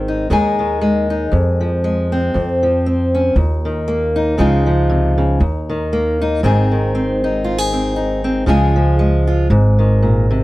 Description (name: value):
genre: acoustic folk duo or small band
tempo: 118 BPM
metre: 4/4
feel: swing 56% on 8ths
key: unclear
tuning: A4 = 439 Hz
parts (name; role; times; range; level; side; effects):
- fingerpicked steel-string acoustic guitar; accompaniment; 0.0-10.4 s; Eb2 to Ab4; -16 LUFS; equal; none
- upright bass; bass; 0.0-10.4 s; Ab1 to F2; -17 LUFS; equal; none
room: little or no reverb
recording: dry, close 1970s-style studio recording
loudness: -14 LUFS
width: side -18 dB against mid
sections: 0.3-10.4 A section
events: none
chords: 0.3 Ebsus4; 1.3 Fm; 2.3 F5; 3.4 Eb5; 4.4 Dbadd9; 5.4 Eb5; 6.4 Ab; 8.5 Db; 9.5 Ab